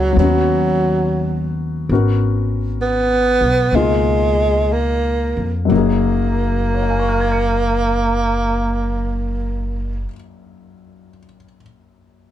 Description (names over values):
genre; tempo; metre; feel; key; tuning
jazz ballad; 58-71 BPM; 4/4; swing 67% on 8ths; F# major; A4 = 443 Hz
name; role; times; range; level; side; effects
breathy tenor saxophone; melody; 0.0-10.1 s; F#3 to B3; -18 LUFS; right 2 dB; plate reverb
warm grand piano; accompaniment; 0.0-12.3 s; F#2 to C#7; -22 LUFS; left 6 dB; none
upright bass; bass; 0.0-10.0 s; F#1 to E#2; -20 LUFS; equal; none
room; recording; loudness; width
light reverb; faint mains hum; -15 LUFS; side -11 dB against mid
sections
0.0-1.9 A section; 1.9-5.7 B section; 5.7-9.9 C section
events
slowing down 0.0-5.7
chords
0.2 Badd9/D#; 1.9 G#m11; 3.7 C#13; 5.7 F#6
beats
0.17 1.02 | 1.90 2.80 3.73 4.69 | 5.71 6.75 7.79 8.82